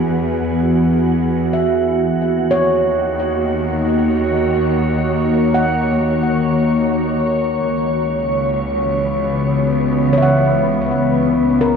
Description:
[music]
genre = ambient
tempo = free time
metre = none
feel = none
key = unclear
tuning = A4 = 442 Hz
[part]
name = glassy FM pad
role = sustained chords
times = 0.0-11.8 s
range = C#3 to C#5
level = -16 LUFS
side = equal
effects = ensemble chorus, built-in reverb
[part]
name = bright studio cello section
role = bass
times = 0.0-11.8 s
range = C#2 to E2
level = -24 LUFS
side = equal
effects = none
[part]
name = handpan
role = arpeggios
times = 1.5-11.8 s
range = A#4 to F#5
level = -20 LUFS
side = equal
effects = ping-pong delay
[sound]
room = wet concert hall reverb, RT60 2.2 s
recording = cassette tape, nothing above 10.4 kHz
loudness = -14 LUFS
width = side -6 dB against mid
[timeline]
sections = 0.0-11.8 A section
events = none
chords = 0.0 Eadd9; 2.2 D#m7; 7.6 C#m7

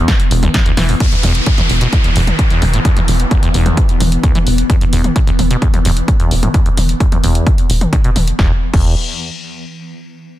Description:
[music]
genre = driving peak-time techno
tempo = 130 BPM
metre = 4/4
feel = straight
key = unclear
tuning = A4 = 440 Hz
[part]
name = acid bass, saw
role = riff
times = 0.0-8.9 s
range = E1 to E3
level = -19 LUFS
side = equal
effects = sidechain pumping, ping-pong delay
[part]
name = swarming drone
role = drone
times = 0.0-8.4 s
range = E3 to B3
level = -22 LUFS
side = equal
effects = built-in reverb, sidechain pumping
[part]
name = electronic kick drum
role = drums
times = 0.1-8.8 s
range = none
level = -13 LUFS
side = equal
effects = none
[part]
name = punchy analog drum machine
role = drums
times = 0.1-8.8 s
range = crash cymbal, hi-hat, snare drum, toms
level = -21 LUFS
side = left 1 dB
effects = none
[part]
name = tight sequencer bass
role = bass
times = 0.3-8.9 s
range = E1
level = -15 LUFS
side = equal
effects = sidechain pumping
[part]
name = downlifter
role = sound effects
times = 1.0-4.7 s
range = none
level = -21 LUFS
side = equal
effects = none
[sound]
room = digital ambience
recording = dense, heavily limited modern master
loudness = -11 LUFS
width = side -14 dB against mid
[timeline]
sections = 0.0-1.0 A section; 1.0-8.4 B section; 8.4-10.2 C section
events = drop 0.0-1.0; drum fill 0.8; filter sweep on analog synth bass 1.0-8.4; filter sweep on acid bass 1.0-8.4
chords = 0.0 E5; 8.4 N.C.

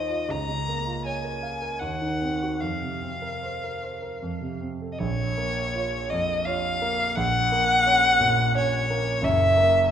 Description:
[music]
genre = classical, romantic duo for violin and grand piano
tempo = 72-90 BPM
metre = 3/4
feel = rubato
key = Bb minor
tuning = A4 = 440 Hz
[part]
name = warm violin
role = melody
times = 0.0-9.9 s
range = Db5 to Bb5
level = -23 LUFS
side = left 2 dB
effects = none
[part]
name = warm concert grand piano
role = accompaniment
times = 0.0-9.9 s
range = Gb1 to F5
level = -27 LUFS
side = right 2 dB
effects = none
[sound]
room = wet scoring stage reverb, RT60 1.8 s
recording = minimal, uncompressed stereo recording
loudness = -22 LUFS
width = side -9 dB against mid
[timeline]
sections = 0.0-5.0 A section; 5.0-9.9 B section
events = none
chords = 0.3 Bbm/Db; 1.8 Cdim/Eb; 2.6 Fsus4; 4.2 F; 5.0 Bbm; 7.2 Gb/Bb; 9.2 Gb7

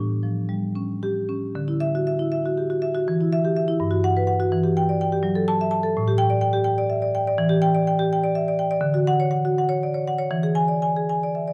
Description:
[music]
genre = classical, contemporary piece for solo marimba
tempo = 82 BPM (dotted quarters)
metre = 6/8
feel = uneven beats, rubato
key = D major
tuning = A4 = 440 Hz
[part]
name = marimba with medium hard mallets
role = solo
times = 0.0-11.5 s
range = G2 to A5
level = -22 LUFS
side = equal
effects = none
[sound]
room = moderate large studio reverb, RT60 1.5 s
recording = dark, warm production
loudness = -22 LUFS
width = mono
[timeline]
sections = 0.0-1.6 A section; 1.6-11.5 B section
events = none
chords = 0.0 Aaug7; 1.6 Dadd9; 3.1 Em; 3.8 Gmaj7; 4.5 Em7; 5.2 F#m7; 6.0 A7sus4; 7.4 Em7; 8.9 Dmaj7; 10.3 E7

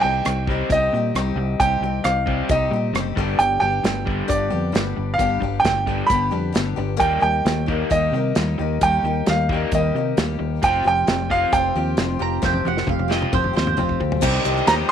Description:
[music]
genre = folk rock and heartland rock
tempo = 133 BPM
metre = 4/4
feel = straight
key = C minor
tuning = A4 = 440 Hz
[part]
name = bright grand piano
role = melody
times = 0.0-14.9 s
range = D5 to B5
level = -21 LUFS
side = right 2 dB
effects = none
[part]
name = picked acoustic archtop guitar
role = accompaniment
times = 0.0-14.9 s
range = G2 to G4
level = -27 LUFS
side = left 12 dB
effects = none
[part]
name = crunchy overdriven guitar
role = riff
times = 0.0-14.9 s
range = G2 to G4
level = -27 LUFS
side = equal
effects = none
[part]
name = fingered electric bass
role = bass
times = 0.0-14.8 s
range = F1 to C3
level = -25 LUFS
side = equal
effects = none
[part]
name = natural country drum kit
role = drums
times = 0.3-14.8 s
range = crash cymbal, hi-hat, kick drum, ride cymbal, rim click, snare drum, toms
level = -24 LUFS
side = equal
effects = none
[part]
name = mandolin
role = second line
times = 12.2-14.0 s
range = C5 to Bb5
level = -25 LUFS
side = right 13 dB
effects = none
[part]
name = bright reed electric piano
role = accompaniment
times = 14.2-14.9 s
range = C5 to G5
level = -27 LUFS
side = right 17 dB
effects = phaser
[part]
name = rich studio string section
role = sustained chords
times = 14.2-14.9 s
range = C5 to Eb6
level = -32 LUFS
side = left 6 dB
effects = none
[part]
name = egg shaker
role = percussion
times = 14.2-14.8 s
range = none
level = -38 LUFS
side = right 18 dB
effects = none
[sound]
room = light reverb, small room ambience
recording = 1960s-style stereo with parts hard left and right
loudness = -18 LUFS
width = side -8 dB against mid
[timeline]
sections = 0.0-14.2 A section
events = drum fill 12.4-14.2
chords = 0.0 Cm; 3.2 G; 7.0 Eb; 10.6 Fsus2; 14.2 Cm

